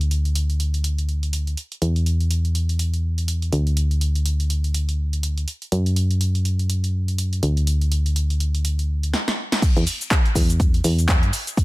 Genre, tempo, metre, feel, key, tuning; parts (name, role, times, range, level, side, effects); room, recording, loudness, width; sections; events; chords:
piano house; 123 BPM; 4/4; swing 58% on 16ths; A4 = 440 Hz
solid FM bass; bass; 0.0-11.3 s; D2 to G2; -20 LUFS; equal; sidechain pumping
punchy analog drum machine; drums; 0.0-11.6 s; cabasa, crash cymbal, handclaps, hi-hat, snare drum; -26 LUFS; right 1 dB
electronic kick drum; drums; 9.6-11.6 s; -18 LUFS; equal; overdrive
little or no reverb; -19 LUFS; side -20 dB against mid
0.0-9.6 A section; 9.6-11.6 B section
drum fill 9.1-9.6; drop 9.6-11.6